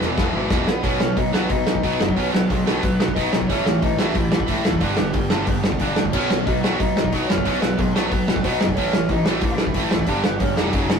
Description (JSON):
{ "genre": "punk rock", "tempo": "182 BPM", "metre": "4/4", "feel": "straight", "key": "unclear", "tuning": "A4 = 443 Hz", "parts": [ { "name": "lead guitar through a small cranked amp", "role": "melody", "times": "0.0-11.0 s", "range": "G3 to F#5", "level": "-26 LUFS", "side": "equal", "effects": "overdrive" }, { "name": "distorted electric guitar", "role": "riff", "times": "0.0-11.0 s", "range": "E2 to B3", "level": "-26 LUFS", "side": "left 5 dB", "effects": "overdrive" }, { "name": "distorted electric guitar", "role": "riff", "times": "0.0-11.0 s", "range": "E2 to B3", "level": "-25 LUFS", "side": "right 6 dB", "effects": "overdrive" }, { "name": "tight distorted guitar", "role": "riff", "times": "0.0-11.0 s", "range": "E2 to B3", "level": "-31 LUFS", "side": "equal", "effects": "none" }, { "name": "fuzz picked electric bass", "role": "bass", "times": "0.0-11.0 s", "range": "E1 to D2", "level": "-29 LUFS", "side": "equal", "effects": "overdrive" }, { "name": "loose indie drum kit", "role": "drums", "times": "0.0-11.0 s", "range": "crash cymbal, hi-hat, kick drum, snare drum", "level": "-22 LUFS", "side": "equal", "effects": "none" } ], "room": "light reverb", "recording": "rough rehearsal-room recording", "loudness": "-18 LUFS", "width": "side -6 dB against mid", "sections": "0.8-11.0 A section", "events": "drum fill 0.0-0.8", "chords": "0.0 E; 0.8 B; 3.5 A; 4.8 G; 6.1 B; 8.8 A; 10.1 G" }